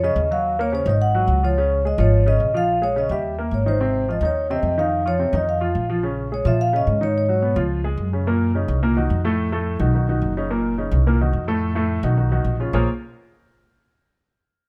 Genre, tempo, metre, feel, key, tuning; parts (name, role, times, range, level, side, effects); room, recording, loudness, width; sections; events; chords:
jazz; 215 BPM; 4/4; straight; Bb minor; A4 = 440 Hz
vibraphone with medium mallets; melody; 0.0-7.6 s; C5 to Gb5; -24 LUFS; equal
warm upright piano; accompaniment; 0.0-12.9 s; A2 to Db5; -26 LUFS; equal
upright bass; bass; 0.0-12.9 s; F#1 to Bb2; -24 LUFS; equal
light reverb; -20 LUFS; mono
0.0-8.3 A section; 8.3-12.7 B section; 12.7-13.8 C section
0.4 Ebm7; 1.0 Ab5; 1.6 Dbadd9; 2.7 Bbm7; 3.2 Eb; 3.8 Ab6; 4.9 F5; 6.0 Bbm7; 7.1 Abm7; 7.7 Db; 8.3 Gb6; 8.8 Cm7b5; 9.4 F7b9; 9.9 Badd9; 10.5 Gb6; 11.1 Cm7b5; 11.6 F7b9; 12.2 Badd9; 12.7 Bbm9